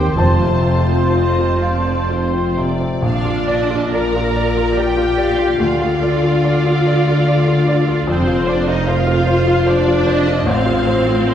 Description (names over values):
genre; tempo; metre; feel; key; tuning
classical; 61-76 BPM; 3/4; rubato; Bb major; A4 = 440 Hz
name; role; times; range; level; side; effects
clear baby grand piano; melody; 0.0-11.3 s; A1 to A5; -18 LUFS; left 2 dB; none
clear symphonic violin section; melody; 0.0-11.3 s; Bb4 to G5; -29 LUFS; left 2 dB; none
mellow small flute group; second line; 0.0-2.7 s; C6; -26 LUFS; equal; none
rich symphonic violin section; second line; 0.0-11.3 s; C5 to Bb5; -26 LUFS; equal; none
warm clarinet; second line; 0.0-2.6 s; F4 to G4; -30 LUFS; left 8 dB; none
warm oboe; second line; 0.0-2.7 s; C5; -27 LUFS; right 3 dB; none
dark bassoon; accompaniment; 0.0-2.7 s; Eb3 to F3; -28 LUFS; left 1 dB; none
rich symphonic viola section; accompaniment; 0.0-11.3 s; C4 to Bb4; -22 LUFS; right 2 dB; none
warm French horn section; sustained chords; 0.0-2.7 s; C4 to F4; -26 LUFS; left 2 dB; none
rich studio cello section; bass; 0.0-11.3 s; Eb2 to D3; -20 LUFS; equal; none
rich symphonic double bass section; bass; 0.0-11.3 s; F1 to Eb2; -23 LUFS; right 2 dB; none
timpani; percussion; 0.2-1.6 s; F2; -22 LUFS; equal; none
room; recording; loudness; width
wet scoring stage reverb, RT60 1.8 s; heard from further back in the room; -13 LUFS; side -10 dB against mid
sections
0.0-3.0 A section; 3.0-11.3 B section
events
none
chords
0.2 F; 3.0 Bb; 5.6 Dm; 8.1 F5; 10.5 F/A